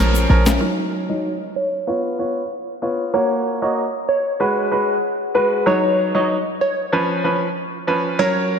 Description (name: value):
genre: dancehall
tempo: 95 BPM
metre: 4/4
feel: straight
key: Eb minor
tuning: A4 = 440 Hz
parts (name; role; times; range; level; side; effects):
- bright grand piano; accompaniment; 0.0-8.6 s; F3 to Db5; -20 LUFS; equal; low-pass filter
- short 808-style bass; bass; 0.0-0.6 s; Bb1; -16 LUFS; equal; none
- egg shaker and timbales; percussion; 0.1-0.6 s; none; -25 LUFS; left 5 dB; none
- electronic snare drum; drums; 0.5-0.6 s; none; -23 LUFS; equal; none
- glassy wavetable pluck; melody; 0.6-8.3 s; Cb5 to Eb5; -22 LUFS; right 1 dB; chorus, low-pass filter, ping-pong delay
room: wet lush hall reverb, RT60 2.8 s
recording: dreamy mix soaked in reverb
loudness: -17 LUFS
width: side -7 dB against mid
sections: 0.6-8.6 A section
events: filter sweep 0.6-8.6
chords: 0.0 Bbm; 0.6 Ebm7; 1.9 Db7; 3.1 Gb; 4.4 Abm7; 5.7 Ebm7; 6.9 Db7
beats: | 0.61 1.24 1.88 2.51 | 3.14 3.77 4.40 5.03 | 5.66 6.30 6.93 7.56 | 8.19